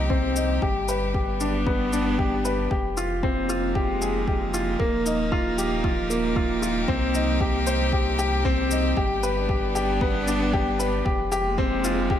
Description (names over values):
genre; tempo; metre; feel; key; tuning
piano and strings electronica; 115 BPM; 4/4; straight; C minor; A4 = 440 Hz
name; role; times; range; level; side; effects
rich string quartet; sustained chords; 0.0-12.2 s; F3 to G4; -28 LUFS; right 2 dB; sidechain pumping
bright upright piano; riff; 0.0-12.2 s; Bb3 to C5; -24 LUFS; left 2 dB; low-pass filter, ping-pong delay
warm sub bass; bass; 0.0-12.2 s; Eb1 to C2; -29 LUFS; equal; sidechain pumping
electronic kick drum; drums; 0.1-12.2 s; none; -27 LUFS; equal; studio reverb
shaker; drums; 0.4-11.9 s; none; -35 LUFS; left 2 dB; studio reverb
room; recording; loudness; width
light reverb, small room ambience; none; -21 LUFS; side -10 dB against mid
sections
0.0-12.2 A section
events
filter sweep on upright piano 0.0-12.2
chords
0.0 Cm; 0.6 G; 2.7 Fmadd9; 4.8 Ebadd9; 6.9 Cm; 9.0 G; 11.1 Fmadd9